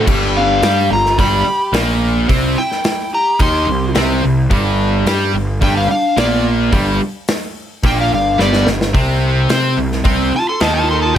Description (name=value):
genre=blues rock power trio and southern rock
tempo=108 BPM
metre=4/4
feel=straight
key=unclear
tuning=A4 = 440 Hz
part: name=overdriven slide guitar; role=melody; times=0.0-11.2 s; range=D5 to C6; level=-17 LUFS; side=left 2 dB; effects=none
part: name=cranked stack guitar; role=riff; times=0.0-11.2 s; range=G2 to C5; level=-17 LUFS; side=equal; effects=overdrive
part: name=fuzz picked electric bass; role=bass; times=0.0-11.1 s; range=G1 to C3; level=-18 LUFS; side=equal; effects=overdrive
part: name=big rock drum kit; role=drums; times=0.1-10.7 s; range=crash cymbal, hi-hat, kick drum, snare drum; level=-19 LUFS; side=equal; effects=none
part: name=lead guitar through a small cranked amp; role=second line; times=0.4-11.2 s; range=B3 to A4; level=-22 LUFS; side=right 3 dB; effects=overdrive
room=light reverb, small room reverb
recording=none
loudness=-12 LUFS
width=side -10 dB against mid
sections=0.1-11.2 A section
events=drum fill 8.4-8.9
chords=0.1 G7; 2.3 C; 4.5 Gm; 8.9 Cm6